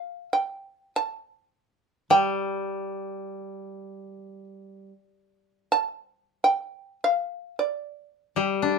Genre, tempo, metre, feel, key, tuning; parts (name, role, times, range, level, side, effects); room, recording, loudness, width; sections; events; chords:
japanese traditional, Japanese chamber music; free time; A4 = 440 Hz
shamisen; melody; 0.0-8.8 s; G4 to A5; -23 LUFS; right 2 dB
koto; accompaniment; 2.1-8.8 s; G3 to D4; -28 LUFS; left 5 dB
moderate studio reverb, RT60 0.6 s; minimal, uncompressed stereo recording; -25 LUFS; side -5 dB against mid
0.0-8.8 A section